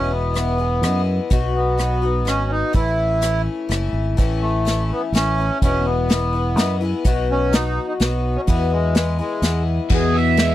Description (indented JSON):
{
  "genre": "folk rock and heartland rock",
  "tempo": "126 BPM",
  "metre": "3/4",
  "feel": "straight",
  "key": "unclear",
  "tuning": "A4 = 438 Hz",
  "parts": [
    { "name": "accordion", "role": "melody", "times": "0.0-10.5 s", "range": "G#3 to E5", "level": "-22 LUFS", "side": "right 1 dB", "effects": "none" },
    { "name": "picked twelve-string acoustic guitar", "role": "accompaniment", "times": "0.0-10.5 s", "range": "E2 to F#4", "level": "-24 LUFS", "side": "left 6 dB", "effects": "none" },
    { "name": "fingered electric bass", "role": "bass", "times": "0.0-10.5 s", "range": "E1 to F#2", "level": "-21 LUFS", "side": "right 1 dB", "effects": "none" },
    { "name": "unplugged drum kit", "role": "drums", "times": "0.4-10.5 s", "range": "crash cymbal, hi-hat, kick drum, ride cymbal, rim click, snare drum", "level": "-19 LUFS", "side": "equal", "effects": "none" },
    { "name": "crunchy overdriven guitar", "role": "riff", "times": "9.9-10.5 s", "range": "E2 to G#3", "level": "-22 LUFS", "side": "equal", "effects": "none" }
  ],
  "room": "little or no reverb",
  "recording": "dry, close 1970s-style studio recording",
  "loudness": "-17 LUFS",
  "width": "side -14 dB against mid",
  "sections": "0.0-9.9 A section",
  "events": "none",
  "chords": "0.0 E; 1.3 B; 2.7 A; 5.6 E; 7.0 B; 8.5 E"
}